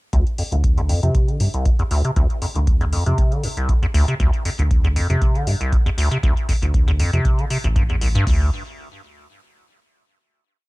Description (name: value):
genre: acid house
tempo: 118 BPM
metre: 4/4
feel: swing 54% on 16ths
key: D minor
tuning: A4 = 440 Hz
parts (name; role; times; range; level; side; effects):
- liquid acid bass; riff; 0.1-8.5 s; C2 to D3; -21 LUFS; equal; chorus, cassette tape, sidechain pumping, digital delay
- round analog bass; bass; 0.1-8.5 s; A1 to G2; -20 LUFS; equal; sidechain pumping
- booming analog drum machine; drums; 0.1-8.4 s; crash cymbal, hi-hat; -32 LUFS; left 3 dB; none
- electronic kick drum; drums; 0.1-8.4 s; none; -19 LUFS; equal; none
room: little or no reverb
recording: none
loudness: -16 LUFS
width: side -22 dB against mid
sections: 0.1-8.3 groove; 8.3-10.3 final chord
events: filter sweep on acid bass 0.1-8.3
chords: 0.1 D7(no3); 8.3 N.C.